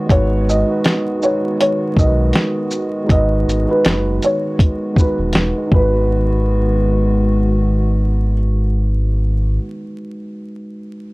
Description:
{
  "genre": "lo-fi hip hop",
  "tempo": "80 BPM",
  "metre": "4/4",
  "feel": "swing 56% on 16ths",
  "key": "unclear",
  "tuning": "A4 = 440 Hz",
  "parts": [
    { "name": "mellow tine electric piano", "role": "accompaniment", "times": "0.0-11.1 s", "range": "G#3 to B4", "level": "-21 LUFS", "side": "right 1 dB", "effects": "none" },
    { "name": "hollow soft pad", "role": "sustained chords", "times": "0.0-9.6 s", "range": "D#3 to F#4", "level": "-26 LUFS", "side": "equal", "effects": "chorus" },
    { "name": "felt-muted upright piano", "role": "melody", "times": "0.1-8.3 s", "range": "B4 to D#5", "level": "-20 LUFS", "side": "right 1 dB", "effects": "none" },
    { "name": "sub bass with octave", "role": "bass", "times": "0.1-9.6 s", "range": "E1 to B1", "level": "-16 LUFS", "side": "equal", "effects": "none" },
    { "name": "lo-fi sampler-style drum kit", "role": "drums", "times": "0.1-5.9 s", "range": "hi-hat, kick drum, shaker, snare drum", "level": "-14 LUFS", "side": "equal", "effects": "none" }
  ],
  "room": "light reverb",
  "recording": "dry, gritty hardware recording, transformer saturation, vinyl crackle",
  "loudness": "-14 LUFS",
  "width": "side -22 dB against mid",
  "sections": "0.0-6.1 A section; 6.1-9.1 B section",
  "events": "none",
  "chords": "0.0 G#m7",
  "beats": "| 0.09 0.84 1.59 2.34 | 3.09 3.84 4.59 5.34 | 6.09 6.84 7.59 8.34"
}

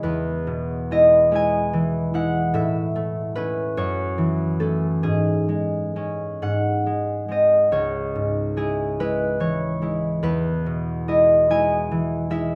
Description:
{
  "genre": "classical, solo harp piece",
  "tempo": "42-51 BPM (dotted quarters)",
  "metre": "6/8",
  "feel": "rubato",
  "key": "C# minor",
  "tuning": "A4 = 438 Hz",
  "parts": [
    { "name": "concert harp", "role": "solo", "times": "0.0-12.6 s", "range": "C#2 to G#5", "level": "-22 LUFS", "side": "equal", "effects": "none" }
  ],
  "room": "light reverb",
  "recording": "close, detailed microphones",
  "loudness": "-22 LUFS",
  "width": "mono",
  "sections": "0.0-12.6 A section",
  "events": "none",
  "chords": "0.0 E; 2.5 A; 3.8 F#m7; 5.0 C#m/G#; 6.4 G#; 7.7 C#m; 10.2 E",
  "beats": "| 0.03 1.34 | 2.54 3.77 | 5.03 6.42 | 7.73 8.99 | 10.22 11.50"
}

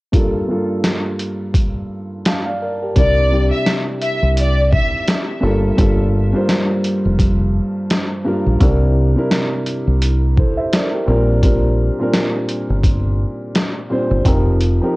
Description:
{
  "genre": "hip hop, boom-bap hip-hop",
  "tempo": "85 BPM",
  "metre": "4/4",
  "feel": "swing 59% on 16ths",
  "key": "G minor",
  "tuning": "A4 = 439 Hz",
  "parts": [
    { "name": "dark grand piano", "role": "accompaniment", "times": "0.1-15.0 s", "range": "G2 to A5", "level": "-19 LUFS", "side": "equal", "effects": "high-pass filter, low-pass filter, cassette tape" },
    { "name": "trip hop sampler-style drum kit", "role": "drums", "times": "0.1-14.8 s", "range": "hi-hat, kick drum, snare drum", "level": "-17 LUFS", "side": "equal", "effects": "cassette tape" },
    { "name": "warm studio violin section", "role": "melody", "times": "3.0-5.0 s", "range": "D5 to E5", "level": "-20 LUFS", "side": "left 1 dB", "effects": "high-pass filter, low-pass filter, cassette tape, tape echo" },
    { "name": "deep dub fingered electric bass", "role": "bass", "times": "3.0-14.8 s", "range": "F1 to C2", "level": "-16 LUFS", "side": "equal", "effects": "none" }
  ],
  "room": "digital ambience",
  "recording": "home recording on cassette",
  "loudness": "-14 LUFS",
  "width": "side -21 dB against mid",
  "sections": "0.1-5.8 A section; 5.8-15.0 B section",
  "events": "none",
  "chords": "0.1 Gm9; 3.0 C9; 5.4 Gm9; 8.6 C9; 11.1 Bb6; 14.3 F9sus4",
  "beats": "| 0.14 0.84 1.55 2.25 | 2.96 3.67 4.37 5.08 | 5.78 6.49 7.20 7.90 | 8.61 9.31 10.02 10.72 | 11.43 12.14 12.84 13.55 | 14.26 14.96"
}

